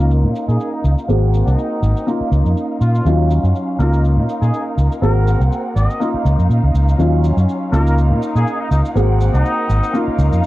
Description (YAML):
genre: filtered disco house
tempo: 122 BPM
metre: 4/4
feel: swing 55% on 16ths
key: Db major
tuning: A4 = 440 Hz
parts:
  - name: brilliant trumpet section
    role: melody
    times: 0.0-10.0 s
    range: Eb4 to Eb5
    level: -26 LUFS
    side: left 1 dB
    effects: low-pass filter
  - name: dark grand piano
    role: accompaniment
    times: 0.0-10.5 s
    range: Gb3 to Ab4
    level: -21 LUFS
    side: left 1 dB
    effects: phaser, low-pass filter
  - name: bright studio violin section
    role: sustained chords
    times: 0.0-10.5 s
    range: C4 to Gb5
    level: -26 LUFS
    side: right 1 dB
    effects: low-pass filter
  - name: fingered electric bass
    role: bass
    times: 0.0-10.4 s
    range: Ab1 to Bb2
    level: -14 LUFS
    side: equal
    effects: low-pass filter
  - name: cabasa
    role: drums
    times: 0.0-10.5 s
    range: none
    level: -47 LUFS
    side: equal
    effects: low-pass filter on perc, studio reverb
room: little or no reverb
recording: dry, gritty hardware recording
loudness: -14 LUFS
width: side -16 dB against mid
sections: 0.0-10.5 A section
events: filter sweep 0.0-10.5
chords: 0.0 Db69; 1.1 Ab9; 2.1 Db69; 3.1 Ebm9; 3.8 Db69; 5.0 Ab9; 6.0 Db69; 7.0 Ebm9; 7.7 Db69; 9.0 Ab9; 9.9 Db69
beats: 0.10 0.60 | 1.09 1.58 2.07 2.56 | 3.06 3.55 4.04 4.53 | 5.02 5.51 6.01 6.50 | 6.99 7.48 7.97 8.46 | 8.96 9.45 9.94 10.43